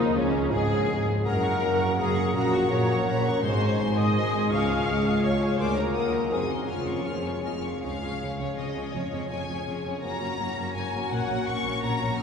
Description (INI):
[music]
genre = classical, dramatic, fast romantic movement for symphony orchestra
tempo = 165 BPM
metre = 3/4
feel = straight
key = Db major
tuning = A4 = 442 Hz
[part]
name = rich symphonic violin section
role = melody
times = 0.0-12.2 s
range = Db4 to F6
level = -34 LUFS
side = left 3 dB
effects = none
[part]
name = flute section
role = second line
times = 0.0-7.6 s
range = Db4 to Ab5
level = -35 LUFS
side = left 1 dB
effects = none
[part]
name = mellow clarinet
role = second line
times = 0.0-7.6 s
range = Db4 to Ab4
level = -38 LUFS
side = right 2 dB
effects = none
[part]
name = warm symphonic violin section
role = second line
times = 0.0-12.2 s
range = Db4 to Db6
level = -36 LUFS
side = left 2 dB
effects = none
[part]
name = mellow bassoon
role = accompaniment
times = 0.0-7.6 s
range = Db3 to Db4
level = -32 LUFS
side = left 1 dB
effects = none
[part]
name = warm symphonic viola section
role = accompaniment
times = 0.0-12.2 s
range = F3 to F5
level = -30 LUFS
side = equal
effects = none
[part]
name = dark French horn section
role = sustained chords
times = 0.0-7.7 s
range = Db3 to F4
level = -35 LUFS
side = left 1 dB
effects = none
[part]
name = concert harp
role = arpeggios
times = 0.0-12.2 s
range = F2 to Db5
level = -34 LUFS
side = left 3 dB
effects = none
[part]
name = rich symphonic cello section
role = bass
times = 0.0-12.2 s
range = Db2 to Db3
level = -32 LUFS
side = equal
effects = none
[part]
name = rich symphonic double bass section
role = bass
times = 0.0-12.2 s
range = F1 to Eb2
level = -31 LUFS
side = right 2 dB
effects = none
[part]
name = timpani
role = percussion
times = 3.4-3.9 s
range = Ab2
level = -36 LUFS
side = equal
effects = none
[sound]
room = wet cathedral reverb, RT60 4.4 s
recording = recorded in a church or concert hall, small room ambience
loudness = -24 LUFS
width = side -6 dB against mid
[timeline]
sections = 0.0-7.8 A section; 7.8-12.2 A section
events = none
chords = 0.2 Db; 1.3 Gb; 2.3 Gb/Bb; 3.4 Ab; 4.5 Db; 5.6 Bb7/D; 5.9 Ebm; 6.3 Ab7/Gb; 6.7 Db/F; 7.8 Db; 8.9 Db/F; 10.0 Gb; 11.1 Gb/Bb